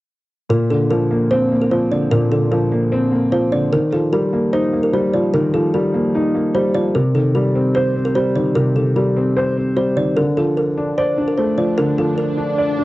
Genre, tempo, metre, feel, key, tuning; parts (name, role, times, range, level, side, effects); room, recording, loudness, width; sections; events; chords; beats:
hip hop; 149 BPM; 4/4; half-time; A4 = 437 Hz
kalimba; melody; 0.5-12.8 s; A4 to D5; -21 LUFS; right 1 dB; low-pass filter
dark concert grand piano; accompaniment; 0.5-12.8 s; Bb2 to D5; -16 LUFS; equal; low-pass filter
swell; sound effects; 11.5-12.8 s; -26 LUFS; right 2 dB
moderate small room ambience, RT60 0.5 s; home recording on cassette; -15 LUFS; side -18 dB against mid
0.5-12.8 A section
swell 11.5-12.8
0.5 Bbadd9; 3.7 Ebadd9; 6.9 Cm; 10.2 Dm
| 0.50 0.91 1.31 1.71 | 2.12 2.52 2.92 3.32 | 3.73 4.13 4.53 4.93 | 5.34 5.74 6.14 6.54 | 6.95 7.35 7.75 8.15 | 8.56 8.96 9.36 9.77 | 10.17 10.57 10.97 11.38 | 11.78 12.18 12.59